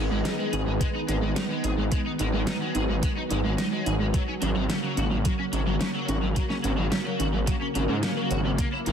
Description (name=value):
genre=synthwave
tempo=108 BPM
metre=4/4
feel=straight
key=unclear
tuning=A4 = 444 Hz
part: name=lush unison pad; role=sustained chords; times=0.0-8.9 s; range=C#3 to B3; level=-31 LUFS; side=equal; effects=chorus, phaser, sidechain pumping, shimmer reverb
part: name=soft round pluck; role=arpeggios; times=0.0-8.9 s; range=F#3 to C#5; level=-32 LUFS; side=right 4 dB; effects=chorus, cassette tape, digital delay, shimmer reverb
part: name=cranked stack guitar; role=riff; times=0.0-8.9 s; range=F#3 to G#4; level=-33 LUFS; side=left 2 dB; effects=overdrive, ensemble chorus, digital delay, shimmer reverb
part: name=wide detuned saw bass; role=bass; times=0.0-8.9 s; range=G#1 to G#2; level=-27 LUFS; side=equal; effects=chorus, tube saturation, sidechain pumping
part: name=pop drum kit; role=drums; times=0.3-8.9 s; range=hi-hat, snare drum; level=-32 LUFS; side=equal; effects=studio ambience
part: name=electronic kick drum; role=drums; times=0.8-8.7 s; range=none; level=-27 LUFS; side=equal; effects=studio ambience
room=moderate digital room reverb, RT60 1.3 s, digital ambience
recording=dense, heavily limited modern master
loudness=-24 LUFS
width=side -8 dB against mid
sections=0.0-8.9 A section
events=none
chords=0.0 G#m; 4.1 F#/G#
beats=0.25 0.81 1.36 | 1.92 2.48 3.03 3.59 | 4.14 4.70 5.25 5.81 | 6.36 6.92 7.47 8.03 | 8.59